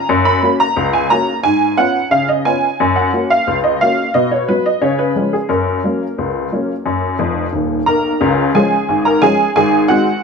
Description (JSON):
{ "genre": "ragtime piano", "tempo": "89 BPM", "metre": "2/4", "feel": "straight", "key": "F# major", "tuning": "A4 = 439 Hz", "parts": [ { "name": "honky-tonk upright piano", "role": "solo", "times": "0.0-10.2 s", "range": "D#1 to B5", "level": "-13 LUFS", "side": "equal", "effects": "none" } ], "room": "moderate plate reverb, RT60 2.8 s", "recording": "none", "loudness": "-13 LUFS", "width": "side -5 dB against mid", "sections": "0.0-8.2 A section; 8.2-10.2 B section", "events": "honky-tonk piano fill 7.2-8.2", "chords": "0.1 F#; 1.4 C#7/G#; 2.8 F#; 4.1 B5; 4.8 C#; 5.5 F#; 8.2 Db; 9.6 Ab7" }